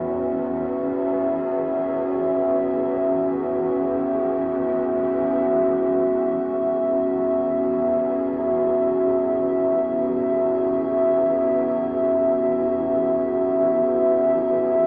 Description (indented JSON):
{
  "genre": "dark ambient drone",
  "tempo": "free time",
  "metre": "none",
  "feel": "none",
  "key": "unclear",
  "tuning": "A4 = 440 Hz",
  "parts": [
    { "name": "dark analog pad", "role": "sustained chords", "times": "0.0-14.9 s", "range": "B3 to E5", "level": "-19 LUFS", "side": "equal", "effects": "wide subtle chorus" },
    { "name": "gamelan-type bronze metallophone", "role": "arpeggios", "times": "0.0-12.8 s", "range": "none", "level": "barely audible", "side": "none", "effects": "none" },
    { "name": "swarming drone", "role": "drone", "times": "0.0-14.9 s", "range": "A1 to E2", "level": "-29 LUFS", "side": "equal", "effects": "built-in reverb" }
  ],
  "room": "wet huge ambient reverb, RT60 7.9 s",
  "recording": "worn, warbling old tape, cassette tape, warbly pitch drift, small speaker sound",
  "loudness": "-19 LUFS",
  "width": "side -33 dB against mid",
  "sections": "0.0-5.6 A section; 5.6-14.9 B section",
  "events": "none",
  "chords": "0.0 C#m"
}